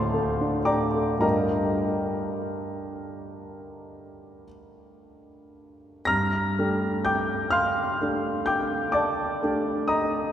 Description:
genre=classical, impressionist solo piano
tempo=36-43 BPM (dotted quarters)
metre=9/8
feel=rubato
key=G minor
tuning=A4 = 440 Hz
part: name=warm concert grand piano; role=solo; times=0.0-10.3 s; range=D2 to Bb6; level=-24 LUFS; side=equal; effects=none
room=wet cathedral reverb, RT60 4.5 s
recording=heard from further back in the room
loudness=-23 LUFS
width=side -10 dB against mid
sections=0.0-6.1 A section; 6.1-10.3 B section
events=none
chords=0.0 D7sus4; 1.2 Gm9; 6.1 Gmadd9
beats=| 1.23 2.90 4.49 | 6.07 7.53 8.95

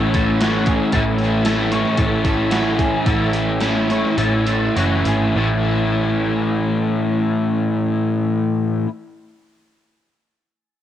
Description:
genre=rock, shoegaze and dream pop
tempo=98-115 BPM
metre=4/4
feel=straight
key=A major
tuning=A4 = 439 Hz
part: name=warm woodwind section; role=sustained chords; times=0.0-0.9 s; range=A4 to C#6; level=-35 LUFS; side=right 1 dB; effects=none
part: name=twangy electric guitar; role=arpeggios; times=0.0-6.2 s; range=F#4 to C#5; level=-26 LUFS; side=equal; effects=ensemble chorus, cassette tape, analog delay
part: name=crunchy overdriven guitar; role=riff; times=0.0-8.9 s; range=A2 to E4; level=-22 LUFS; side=right 7 dB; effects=reverse reverb, cassette tape
part: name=overdriven electric guitar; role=riff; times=0.0-8.9 s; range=A2 to E4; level=-20 LUFS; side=left 5 dB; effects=wide subtle chorus, cassette tape
part: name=vintage muted picked electric bass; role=bass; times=0.0-8.7 s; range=F#1 to A1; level=-24 LUFS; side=equal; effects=none
part: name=gated 80s digital drum machine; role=drums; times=0.1-5.2 s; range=hi-hat, kick drum, snare drum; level=-24 LUFS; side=equal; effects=gated reverb, gated reverb snare, overdrive, cassette tape
room=light reverb, digital ambience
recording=home recording on cassette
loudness=-16 LUFS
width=side -11 dB against mid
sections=0.0-5.4 A section; 5.4-10.2 B section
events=slowing down 0.9-5.4; kick and snare drop out 4.2-5.4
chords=0.0 A6; 5.4 A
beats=0.41 | 0.93 1.45 1.98 2.51 | 3.06 3.61 4.18 4.76 | 5.37 5.98 6.59 7.20 | 7.81 8.42

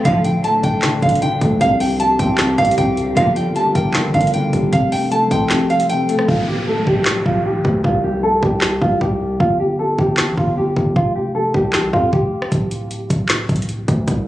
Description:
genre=hip hop, trap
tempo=154 BPM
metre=4/4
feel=half-time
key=D minor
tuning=A4 = 438 Hz
part: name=nylon-string guitar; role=melody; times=0.0-12.5 s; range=F4 to A5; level=-18 LUFS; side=equal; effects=low-pass filter, ping-pong delay
part: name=felt-muted upright piano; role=accompaniment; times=0.0-6.3 s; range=C3 to D4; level=-20 LUFS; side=left 1 dB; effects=low-pass filter
part: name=warbly tape-like pad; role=sustained chords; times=0.0-6.3 s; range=F3 to F5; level=-27 LUFS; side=right 1 dB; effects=chorus, built-in reverb
part: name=dark studio string section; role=stabs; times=0.1-0.3, 3.2-3.4 s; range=A2 to F3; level=-24 LUFS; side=equal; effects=ping-pong delay
part: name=distorted 808-style bass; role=bass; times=0.1-14.3 s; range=D1 to F2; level=-21 LUFS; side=equal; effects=distortion
part: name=trap drum kit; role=drums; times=0.1-14.2 s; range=handclaps, hi-hat, kick drum, rim click, snare drum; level=-21 LUFS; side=equal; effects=vintage 12-bit sampler grit
part: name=downlifter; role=sound effects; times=6.3-9.4 s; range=none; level=-26 LUFS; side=right 1 dB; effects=none
room=light reverb, studio ambience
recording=recorded on a phone in the room, club reverb, compression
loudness=-14 LUFS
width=side -14 dB against mid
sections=0.0-6.3 A section; 6.3-14.3 B section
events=kick muted 5.5-6.3; hi-hats muted 6.3-12.5; break 12.5-14.3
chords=0.1 Dm; 1.6 Csus4; 3.2 Gm7; 4.7 F; 6.3 Dmadd11; 7.8 C5; 9.4 N.C.; 11.0 F5; 12.5 N.C.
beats=| 0.05 0.44 0.83 1.22 | 1.61 2.00 2.39 2.78 | 3.17 3.56 3.95 4.34 | 4.72 5.12 5.50 5.89 | 6.28 6.67 7.06 7.45 | 7.84 8.23 8.62 9.01 | 9.40 9.79 10.18 10.57 | 10.96 11.35 11.74 12.13 | 12.52 12.91 13.30 13.69 | 14.08

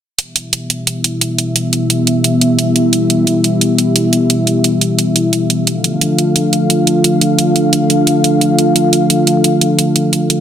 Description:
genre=dark technical drum and bass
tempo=175 BPM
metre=4/4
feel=straight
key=E phrygian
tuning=A4 = 441 Hz
part: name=dark analog pad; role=sustained chords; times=0.2-10.4 s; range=B3 to F5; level=-12 LUFS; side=equal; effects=chorus
part: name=electronic hi-hat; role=drums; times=0.2-10.4 s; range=none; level=-15 LUFS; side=right 3 dB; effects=overdrive
room=moderate lush hall reverb, RT60 2.1 s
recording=dense, heavily limited modern master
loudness=-11 LUFS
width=side -9 dB against mid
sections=0.2-10.4 A section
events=none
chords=0.2 Em; 5.7 Dm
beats=| 0.19 0.53 0.87 1.21 | 1.56 1.90 2.24 2.59 | 2.93 3.27 3.61 3.96 | 4.30 4.64 4.99 5.33 | 5.67 6.01 6.36 6.70 | 7.04 7.39 7.73 8.07 | 8.41 8.76 9.10 9.44 | 9.79 10.13

